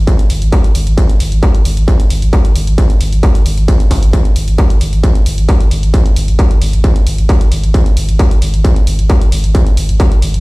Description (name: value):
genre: driving peak-time techno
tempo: 133 BPM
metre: 4/4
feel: straight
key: unclear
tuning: A4 = 439 Hz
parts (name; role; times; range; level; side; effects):
- saturated sub bass; bass; 0.0-10.4 s; G#1; -13 LUFS; equal; overdrive, sidechain pumping, low-pass filter
- electronic hi-hat; drums; 0.1-10.4 s; none; -26 LUFS; right 1 dB; overdrive
- electronic kick drum; drums; 0.1-10.1 s; none; -10 LUFS; equal; distortion
room: little or no reverb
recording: played on a big sound system in a bare room, stone room reverb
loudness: -9 LUFS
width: side -23 dB against mid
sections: 0.0-10.4 A section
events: none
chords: none